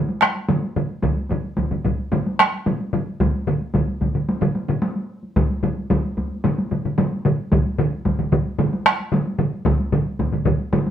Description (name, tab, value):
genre	japanese traditional, taiko drum ensemble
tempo	111 BPM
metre	4/4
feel	straight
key	none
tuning	none
part	solo taiko drums	percussion	0.1-10.9 s	none	-25 LUFS	equal	none
part	solo taiko drums	percussion	0.2-10.9 s	none	-23 LUFS	left 4 dB	none
part	taiko ensemble	percussion	0.2-10.9 s	none	-22 LUFS	right 3 dB	none
part	solo taiko drums	percussion	1.0-10.6 s	none	-26 LUFS	equal	none
room	wet studio reverb, RT60 0.6 s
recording	band playing live in one room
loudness	-19 LUFS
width	side -10 dB against mid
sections	0.0-10.9 A section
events	none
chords	none